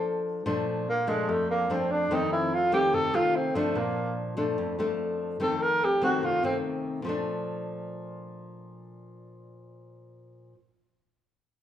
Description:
bossa nova; 146 BPM; 4/4; straight; Bb major; A4 = 443 Hz
breathy tenor saxophone; melody; 0.0-6.6 s; Ab3 to Bb4; -25 LUFS; right 1 dB
nylon-string guitar; accompaniment; 0.0-10.6 s; F2 to C5; -30 LUFS; left 2 dB
wet large studio reverb, RT60 1.2 s; band playing live in one room; -25 LUFS; side -10 dB against mid
0.5-7.0 A section; 7.0-10.3 B section
tenor saxophone solo 0.5-7.0
0.5 Bbmaj7; 2.1 F7; 3.7 Bbmaj7; 5.4 F7; 7.0 Bbmaj7

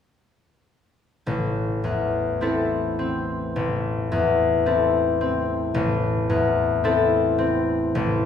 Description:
classical; 54 BPM; 4/4; rubato; A minor; A4 = 440 Hz
concert harp; accompaniment; 1.3-8.3 s; A1 to A4; -20 LUFS; left 2 dB
wet recital hall reverb, RT60 1.5 s; heard from further back in the room, studio ambience; -20 LUFS; side -8 dB against mid
1.3-8.3 A section
1.3 Am

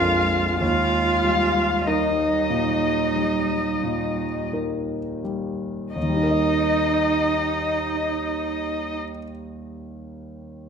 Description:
classical, slow romantic movement for piano quintet; 41-51 BPM; 4/4; rubato; Eb major; A4 = 439 Hz
muted violin; melody; 0.0-8.9 s; Eb5 to F5; -28 LUFS; left 8 dB
muted cello; second line; 0.0-9.0 s; G3 to Eb4; -32 LUFS; right 6 dB
muted violin; second line; 0.0-9.0 s; Eb5 to F5; -28 LUFS; left 2 dB
muted viola; accompaniment; 0.0-9.0 s; Eb4 to F4; -25 LUFS; right 5 dB
warm concert grand piano; accompaniment; 0.0-10.7 s; Bb1 to Eb5; -26 LUFS; left 1 dB
moderate recital hall reverb, RT60 1.5 s; minimal, uncompressed stereo recording; -20 LUFS; side -6 dB against mid
0.0-6.0 A section; 6.0-10.7 B section
slowing down 0.0-6.0
0.0 Bb7; 0.6 Eb

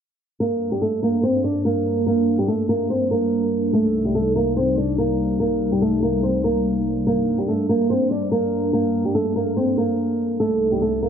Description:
hip hop; 144 BPM; 4/4; half-time; G minor; A4 = 440 Hz
flamenco guitar; melody; 0.4-11.1 s; G3 to D5; -20 LUFS; right 1 dB; tape echo
warbly tape-like pad; sustained chords; 0.4-11.1 s; C2 to Eb4; -24 LUFS; left 1 dB; chorus, built-in reverb
moderate lush hall reverb, RT60 2.2 s; low-pass filter; -18 LUFS; side -8 dB against mid
0.4-11.1 A section
0.4 Gm; 3.7 Cm; 7.1 Gm; 10.4 Cm

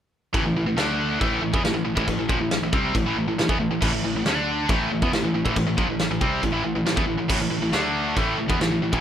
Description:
heavy metal; 138 BPM; 4/4; straight; A minor; A4 = 442 Hz
tight distorted guitar; riff; 0.3-9.0 s; A2 to D4; -23 LUFS; equal; distortion
picked electric bass; bass; 0.3-9.0 s; A1 to E2; -31 LUFS; equal
big rock drum kit; drums; 0.3-9.0 s; china cymbal, crash cymbal, kick drum, snare drum; -26 LUFS; equal
light reverb; rough home demo mix; -20 LUFS; side -9 dB against mid
0.3-9.0 A section
0.3 A5; 0.8 D5; 1.2 Am; 4.2 D5; 4.7 Am; 7.7 D5; 8.2 A5

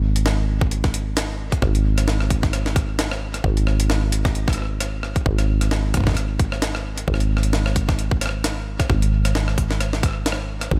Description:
IDM; 132 BPM; 4/4; swing 56% on 16ths; A4 = 441 Hz
deep acid bass; bass; 0.0-10.8 s; G#1; -24 LUFS; equal
jungle sampler-style drum kit; drums; 0.2-10.7 s; hi-hat, rim click, snare drum; -28 LUFS; equal; diffuse ambient delay
electronic kick drum; drums; 0.6-10.8 s; -24 LUFS; equal
little or no reverb; -21 LUFS; mono
0.0-10.8 A section

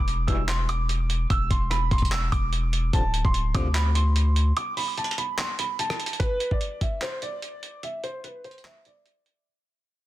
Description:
hip hop, trap; 147 BPM; 4/4; half-time; A4 = 440 Hz
felt-muted upright piano; melody; 0.0-9.4 s; B4 to E6; -30 LUFS; right 2 dB; low-pass filter
long sustained 808-style bass; bass; 0.0-4.5 s; D1 to D2; -24 LUFS; equal
dusty soul sampler-style drum kit; drums; 0.1-9.4 s; handclaps, hi-hat, kick drum, rim click; -27 LUFS; equal; soft clipping on snare
mellow brass ensemble; stabs; 0.3-0.4, 2.9-3.7 s; G2 to F3; -36 LUFS; left 4 dB; ping-pong delay
digital ambience; dense, heavily limited modern master; -22 LUFS; side -15 dB against mid
0.0-6.2 A section; 6.2-9.5 B section
break 4.6-6.2, 7.8-9.5; fade-out 6.2-9.5; filter sweep on felt piano 6.2-9.5
0.0 N.C.; 2.9 D5; 6.2 N.C.

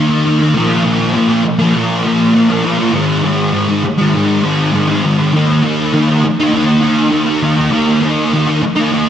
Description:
rock; 100 BPM; 4/4; straight; A4 = 440 Hz
thick fuzz guitar; solo; 0.0-9.1 s; Ab2 to Eb4; -11 LUFS; equal; distortion, ensemble chorus, analog delay
wet lush hall reverb, RT60 2.8 s; dreamy mix soaked in reverb; -11 LUFS; side -9 dB against mid
0.0-9.1 A section
0.0 Eb5; 0.5 Bb5; 2.9 Ab5; 5.3 Eb5

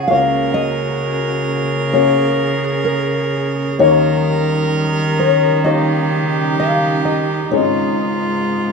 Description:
acoustic folk-pop ballad; 65 BPM; 4/4; straight; A4 = 438 Hz
nylon-string guitar; melody; 0.0-8.7 s; Bb4 to F5; -18 LUFS; left 5 dB
bright viola; second line; 0.0-8.7 s; F4 to Bb4; -22 LUFS; right 2 dB
felt-muted upright piano; accompaniment; 0.0-8.7 s; Ab1 to Eb5; -22 LUFS; left 2 dB
dark chamber string section; sustained chords; 0.0-8.7 s; Db3 to Ab4; -24 LUFS; right 3 dB
warm cello; bass; 0.0-8.7 s; Ab2 to Eb3; -19 LUFS; right 1 dB
moderate studio reverb, RT60 0.5 s; minimal, uncompressed stereo recording; -14 LUFS; side -4 dB against mid
0.0-8.7 A section
0.1 Gb/Db; 3.8 Eb7; 7.5 Absus4

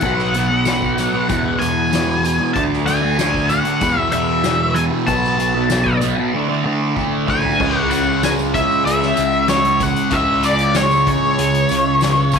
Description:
psychedelic rock; 95 BPM; 4/4; straight; A4 = 439 Hz
octave-fuzz lead guitar; melody; 0.0-12.4 s; C#5 to A5; -18 LUFS; left 2 dB; wah, distortion, tape echo
tonewheel organ; sustained chords; 0.0-12.4 s; C#3 to E5; -33 LUFS; right 12 dB
thick fuzz guitar; riff; 0.0-12.4 s; E2 to D4; -18 LUFS; right 1 dB; distortion, phaser
growling picked electric bass; bass; 0.0-12.4 s; B1 to E2; -24 LUFS; right 1 dB; overdrive
soft-mallet drum kit; drums; 0.0-12.4 s; crash cymbal, hi-hat, kick drum, snare drum, toms; -24 LUFS; left 4 dB
tambourine; percussion; 0.0-12.4 s; -36 LUFS; right 16 dB
light reverb, studio ambience; 1960s-style stereo; -14 LUFS; side -6 dB against mid
0.0-7.6 A section; 7.6-12.4 B section
drum fill 7.0-7.6
0.0 B7; 1.3 E7; 2.6 D; 3.8 E7; 5.1 B7; 6.3 Dsus2; 7.6 C#m

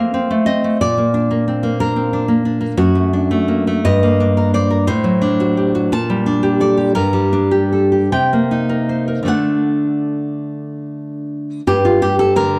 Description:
romantic piece for solo classical guitar; 49-62 BPM (dotted quarters); 6/8; rubato; G minor; A4 = 439 Hz
nylon-string guitar; solo; 0.0-12.6 s; F#2 to A5; -16 LUFS; equal
moderate recital hall reverb, RT60 1.4 s; dark, warm production; -16 LUFS; mono
0.0-11.7 A section
0.0 F; 0.8 Bb; 2.8 D/F#; 3.9 Gm; 4.9 D7/A; 5.9 Gm/Bb; 7.0 Gm; 8.1 Cm7; 9.3 D; 11.7 G5

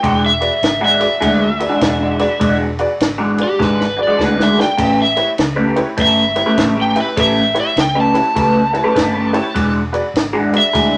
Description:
electric blues shuffle; 101 BPM; 4/4; swing 64% on 8ths; E mixolydian; A4 = 440 Hz
overdriven slide guitar; melody; 0.0-11.0 s; G4 to A5; -19 LUFS; equal
electric guitar through a small old amp; riff; 0.0-11.0 s; E3 to B4; -19 LUFS; equal; phaser
vintage muted fingered electric bass; bass; 0.0-11.0 s; E1 to D2; -28 LUFS; equal
compact cocktail drum kit; drums; 0.0-10.9 s; crash cymbal, kick drum, ride cymbal, snare drum; -24 LUFS; equal
honky-tonk upright piano; accompaniment; 0.4-10.6 s; E4 to E5; -24 LUFS; equal
wet studio reverb, RT60 0.9 s; -15 LUFS; mono
0.0-11.0 A section
electric slide guitar solo 0.0-11.0; drum fill 3.6-4.8
0.0 E9; 4.8 A9; 9.6 E9

